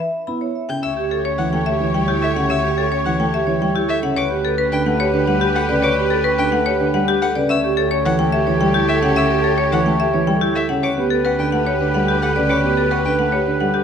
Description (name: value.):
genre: classical, minimalist pattern music.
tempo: 108 BPM.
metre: 3/4.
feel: straight.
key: unclear.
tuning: A4 = 440 Hz.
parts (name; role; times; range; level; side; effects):
marimba with hard mallets; melody; 0.0-13.8 s; G4 to B5; -22 LUFS; left 8 dB; none.
vibraphone with medium hard mallets; arpeggios; 0.0-13.8 s; C#4 to E5; -23 LUFS; right 6 dB; none.
dark baby grand piano; accompaniment; 0.3-13.8 s; C#3 to B3; -22 LUFS; right 1 dB; none.
warm violin; arpeggios; 0.7-13.2 s; E5 to G6; -27 LUFS; left 3 dB; none.
warm oboe; second line; 0.8-13.8 s; B4 to C#5; -24 LUFS; right 2 dB; none.
clear studio string section; sustained chords; 0.8-13.8 s; G4 to C#5; -26 LUFS; left 4 dB; none.
rich double bass; bass; 0.8-13.8 s; D2; -24 LUFS; right 2 dB; none.
room: moderate scoring stage reverb, RT60 1.5 s.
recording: none.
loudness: -16 LUFS.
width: side -7 dB against mid.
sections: 0.8-13.8 A section.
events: none.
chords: 0.0 Em; 0.8 A7/D; 4.2 Gmaj9/D; 7.5 A7/D; 10.8 Gmaj9/D.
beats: 0.28 | 0.83 1.39 1.94 | 2.50 3.05 3.61 | 4.17 4.72 5.28 | 5.83 6.39 6.94 | 7.50 8.05 8.61 | 9.16 9.72 10.28 | 10.83 11.39 11.94 | 12.50 13.05 13.61.